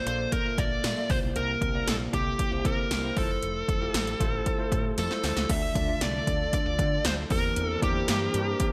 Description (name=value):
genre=1980s-style pop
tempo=116 BPM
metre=4/4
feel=straight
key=unclear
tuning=A4 = 440 Hz
part: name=dark smooth lead guitar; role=melody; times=0.0-8.7 s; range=G4 to E5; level=-32 LUFS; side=equal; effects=overdrive, delay
part: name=bell-like tine electric piano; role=accompaniment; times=0.0-8.7 s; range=Bb2 to E5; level=-36 LUFS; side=equal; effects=analog chorus
part: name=woody fretless electric bass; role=bass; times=0.1-8.5 s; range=F1 to D3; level=-36 LUFS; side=equal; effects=none
part: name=80s electronic pad drums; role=drums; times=0.1-8.7 s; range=crash cymbal, hi-hat, kick drum, snare drum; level=-32 LUFS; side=equal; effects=gated reverb
part: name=tambourine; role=percussion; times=0.8-5.1 s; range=none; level=-48 LUFS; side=equal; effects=none
part: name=brassy analog pad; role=sustained chords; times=5.5-8.7 s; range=D3 to Bb4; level=-40 LUFS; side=equal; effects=chorus
room=moderate plate reverb, RT60 1.9 s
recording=bright 1980s-style digital production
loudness=-27 LUFS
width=mono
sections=0.0-5.5 A section; 5.5-8.7 B section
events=drum fill 5.0-5.5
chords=0.0 Bbmaj7; 1.1 C7; 3.2 Fmaj7; 5.5 Dm; 7.3 C7/E